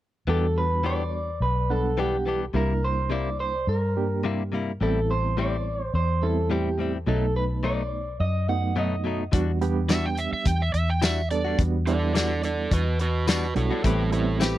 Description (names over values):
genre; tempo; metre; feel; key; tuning
straight-eighth soul blues; 106 BPM; 4/4; straight; E minor; A4 = 440 Hz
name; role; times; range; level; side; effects
electric guitar through a small old amp; melody; 0.3-9.2 s; G4 to F#5; -28 LUFS; right 1 dB; spring reverb
barky reed electric piano; accompaniment; 0.3-14.6 s; F#3 to F#5; -30 LUFS; right 6 dB; fast tremolo
direct-recorded clean electric guitar; stabs; 0.3-14.6 s; A2 to B4; -28 LUFS; left 6 dB; none
vintage muted fingered electric bass; bass; 0.3-14.6 s; A1 to G2; -26 LUFS; left 1 dB; none
warm soul drum kit; drums; 9.3-14.6 s; hi-hat, kick drum, snare drum, tambourine; -25 LUFS; left 1 dB; none
overdriven slide guitar; second line; 9.9-14.6 s; E4 to G5; -28 LUFS; right 4 dB; none
room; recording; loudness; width
little or no reverb; dry, close 1970s-style studio recording; -22 LUFS; side -14 dB against mid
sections
0.3-9.3 A section; 9.3-14.6 B section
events
electric slide guitar solo 9.3-14.6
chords
0.3 Em7; 2.5 C7; 4.8 Am7; 7.1 B7; 9.3 Em9; 13.8 Am9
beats
| 0.28 0.84 1.41 1.98 | 2.54 3.11 3.68 4.24 | 4.81 5.38 5.94 6.51 | 7.07 7.64 8.20 8.77 | 9.33 9.89 10.46 11.02 | 11.59 12.15 12.71 13.28 | 13.84 14.41